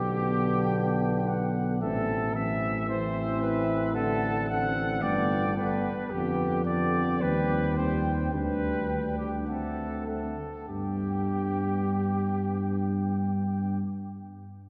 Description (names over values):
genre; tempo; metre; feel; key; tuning
classical, brass quintet; 95-113 BPM; 4/4; rubato; G major; A4 = 440 Hz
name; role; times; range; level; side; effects
mellow trumpet; melody; 0.0-13.8 s; E5 to G5; -39 LUFS; equal; none
warm flugelhorn; second line; 0.0-13.8 s; G4 to F#5; -35 LUFS; equal; none
mellow French horn; accompaniment; 0.0-13.8 s; B3 to D4; -39 LUFS; equal; none
warm euphonium; accompaniment; 0.0-13.8 s; D3 to B3; -38 LUFS; equal; none
dark tuba; bass; 0.0-13.8 s; G1 to G2; -31 LUFS; equal; none
room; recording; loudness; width
wet church reverb, RT60 3.7 s; recorded in a church or concert hall, nothing above 7.6 kHz; -28 LUFS; mono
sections
0.0-10.7 A section; 10.7-13.1 B section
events
slowing down 5.0-10.7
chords
0.0 G/B; 1.8 Am; 4.0 D7/A; 5.0 G; 6.1 G7/F; 7.2 Cm/Eb; 8.3 G/D; 9.5 D7; 10.7 G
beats
0.18 0.73 1.28 | 1.82 2.35 2.89 3.42 | 3.95 4.49 5.03 5.57 | 6.11 6.66 7.21 7.77 | 8.33 8.90 9.48 10.07 | 10.68 11.28 11.87 12.45